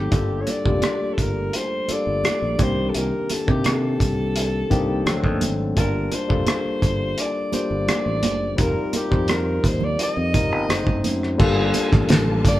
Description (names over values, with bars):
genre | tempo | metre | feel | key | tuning
lush 1970s-style soul | 85 BPM | 4/4 | straight | G minor | A4 = 438 Hz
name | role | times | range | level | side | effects
breathy alto saxophone | melody | 0.0-12.6 s | G4 to Eb5 | -26 LUFS | equal | none
barky tine electric piano | accompaniment | 0.0-12.6 s | Eb3 to A5 | -25 LUFS | left 3 dB | overdrive
fingered electric bass | bass | 0.0-12.6 s | F1 to C3 | -26 LUFS | equal | none
cloth-damped thuddy drum kit | drums | 0.1-12.6 s | crash cymbal, hi-hat, kick drum, rim click, snare drum | -21 LUFS | equal | none
congas | percussion | 0.5-12.3 s | none | -30 LUFS | right 6 dB | none
warm studio string section | sustained chords | 11.4-12.6 s | G3 to A5 | -31 LUFS | right 1 dB | none
room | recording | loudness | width
moderate large studio reverb, RT60 1.5 s | band playing live in one room | -19 LUFS | side -15 dB against mid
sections
0.0-11.4 A section; 11.4-12.6 B section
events
none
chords
0.1 Gm9; 2.6 Cm9; 5.1 D7; 5.8 Gm9; 8.6 F9sus4; 10.7 F#dim7; 11.4 Gm9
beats
| 0.12 0.83 1.53 2.24 | 2.95 3.65 4.36 5.06 | 5.77 6.47 7.18 7.88 | 8.59 9.29 9.99 10.69 | 11.40 12.10